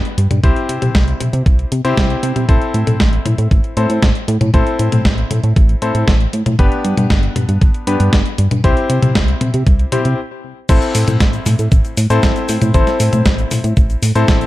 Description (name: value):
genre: italo disco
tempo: 117 BPM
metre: 4/4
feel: straight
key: A minor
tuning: A4 = 440 Hz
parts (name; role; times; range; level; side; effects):
- detuned 8-bit digital drum machine; drums; 0.1-14.5 s; cabasa, crash cymbal, hi-hat, snare drum, toms; -19 LUFS; left 1 dB; none
- chorused synth bass; bass; 0.2-14.5 s; G1 to C3; -16 LUFS; equal; none
- clear electric grand piano; stabs; 0.4-14.5 s; B3 to C5; -20 LUFS; left 3 dB; low-pass filter, ping-pong delay
- electronic kick drum; drums; 0.4-14.4 s; none; -14 LUFS; equal; none
room: digital ambience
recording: dark, warm production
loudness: -12 LUFS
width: side -16 dB against mid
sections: 0.0-10.7 A section; 10.7-14.5 B section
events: stop 10.2-10.7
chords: 0.4 C; 2.5 Am; 6.6 G; 8.6 C; 10.7 Am